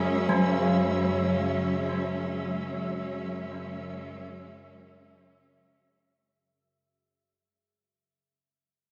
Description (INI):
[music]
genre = dark ambient drone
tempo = free time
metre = none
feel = none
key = unclear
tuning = A4 = 440 Hz
[part]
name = warm symphonic cello section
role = sustained chords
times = 0.0-6.4 s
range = F#3 to C#4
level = -33 LUFS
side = equal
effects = none
[part]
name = overtone-sweeping drone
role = drone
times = 0.0-6.5 s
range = F#2 to C#3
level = -34 LUFS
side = equal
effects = chorus, built-in reverb, phaser
[part]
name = flickering grainy texture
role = texture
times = 0.0-6.5 s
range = E5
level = -41 LUFS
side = equal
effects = built-in reverb
[part]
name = gamelan-type bronze metallophone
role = arpeggios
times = 0.3-6.8 s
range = F#3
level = -32 LUFS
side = equal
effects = delay
[sound]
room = wet cathedral reverb, RT60 5.8 s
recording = in a vast, echoing space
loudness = -28 LUFS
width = mono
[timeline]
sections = 0.0-6.4 A section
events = fade-out 0.7-6.4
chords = 0.0 F#sus2